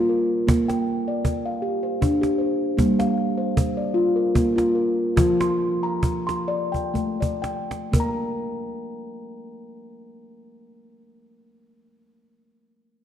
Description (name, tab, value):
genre	world meditative, meditative tuned percussion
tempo	59-78 BPM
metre	3/4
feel	swing 55% on 16ths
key	unclear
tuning	A4 = 441 Hz
part	steel tongue drum	arpeggios	0.0-11.7 s	F3 to C6	-22 LUFS	equal	none
part	cajon	percussion	0.5-8.4 s	none	-23 LUFS	right 1 dB	none
room	moderate echo chamber reverb, RT60 2.0 s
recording	dark, warm production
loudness	-20 LUFS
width	side -10 dB against mid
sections	0.0-7.9 A section; 7.9-11.0 B section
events	slowing down 2.8-7.9; drum fill 6.7-7.9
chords	0.5 Bb; 2.8 Gm; 5.2 F; 7.9 N.C.